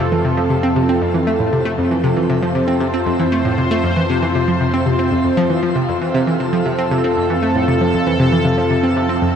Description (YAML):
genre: ambient, sequencer-driven space music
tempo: 117 BPM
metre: 4/4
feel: straight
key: F major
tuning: A4 = 440 Hz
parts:
  - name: sweeping resonant pad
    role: sustained chords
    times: 0.0-9.4 s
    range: C4 to C5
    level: -17 LUFS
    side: right 1 dB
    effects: chorus
  - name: analog pluck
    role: riff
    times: 0.0-9.3 s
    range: F2 to C4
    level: -18 LUFS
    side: equal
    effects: chorus, analog delay
  - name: analog drone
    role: bass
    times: 0.0-9.4 s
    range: F2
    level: -25 LUFS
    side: equal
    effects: chorus
  - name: twinkling granular texture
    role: texture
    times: 0.0-9.4 s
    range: E5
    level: -36 LUFS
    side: equal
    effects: built-in reverb
room: wet shimmer reverb, RT60 9.2 s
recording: dark, warm production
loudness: -14 LUFS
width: side -8 dB against mid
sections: 0.0-9.4 A section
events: fade-in on synth texture 0.0-9.4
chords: 0.0 F